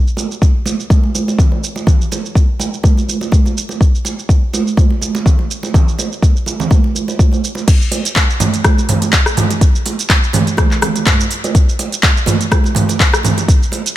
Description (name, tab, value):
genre	house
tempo	124 BPM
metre	4/4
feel	swing 55% on 16ths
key	none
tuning	none
part	afro-pop drum kit	drums	0.1-13.9 s	crash cymbal, handclaps, hi-hat, rim click, shaker, toms	-17 LUFS	equal	studio reverb
part	congas	percussion	0.2-13.8 s	none	-19 LUFS	right 4 dB	none
part	electronic kick drum	drums	0.4-13.6 s	none	-12 LUFS	equal	studio reverb
room	little or no reverb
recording	none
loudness	-11 LUFS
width	side -14 dB against mid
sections	0.0-7.7 A section; 7.7-14.0 B section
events	drop 7.7-14.0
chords	none